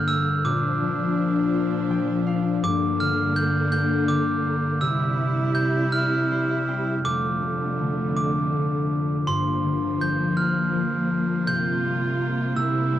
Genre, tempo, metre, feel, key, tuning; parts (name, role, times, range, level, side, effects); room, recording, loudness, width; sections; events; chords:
children's music, lullaby; 55 BPM (dotted quarters); 6/8; rubato; F major; A4 = 441 Hz
glockenspiel with brass mallets; melody; 0.0-13.0 s; C6 to G6; -26 LUFS; right 2 dB
concert harp; accompaniment; 0.0-13.0 s; F2 to G5; -24 LUFS; left 3 dB
rich studio string section; sustained chords; 0.0-13.0 s; F2 to F4; -28 LUFS; right 3 dB
small room ambience; dry, close 1970s-style studio recording; -21 LUFS; side -12 dB against mid
0.0-7.1 A section; 7.1-13.0 B section
harp fill 1.5-2.6, 5.9-7.1
0.4 Bb; 2.6 Gm; 4.8 C; 7.1 F6; 9.3 Gm7; 11.5 C7sus4